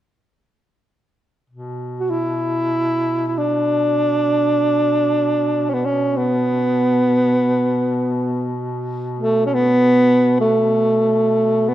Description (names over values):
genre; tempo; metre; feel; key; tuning
caucasian folk, Caucasian lament; free time; none; none; B minor; A4 = 444 Hz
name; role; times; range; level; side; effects
mellow duduk; drone; 1.5-11.7 s; B2; -26 LUFS; left 1 dB; none
mellow alto saxophone; melody; 2.0-11.7 s; A3 to F#4; -16 LUFS; equal; none
room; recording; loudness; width
moderate concert hall reverb, RT60 1.9 s; minimal, uncompressed stereo recording; -16 LUFS; side -13 dB against mid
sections
1.5-11.7 A section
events
none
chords
none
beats
free time